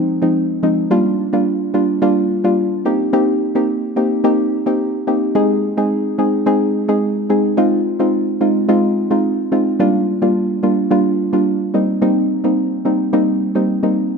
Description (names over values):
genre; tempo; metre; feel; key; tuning
afrobeats; 108 BPM; 4/4; straight; F dorian; A4 = 439 Hz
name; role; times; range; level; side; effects
soft round pluck; solo; 0.0-14.0 s; F3 to Ab4; -14 LUFS; equal; chorus
room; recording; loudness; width
light reverb; none; -14 LUFS; side -5 dB against mid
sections
0.0-14.2 A section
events
none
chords
0.0 Fm7; 0.9 Gm7; 2.9 Cm7; 5.4 Ab; 7.6 Fm7; 9.8 Gm7; 11.7 Cm7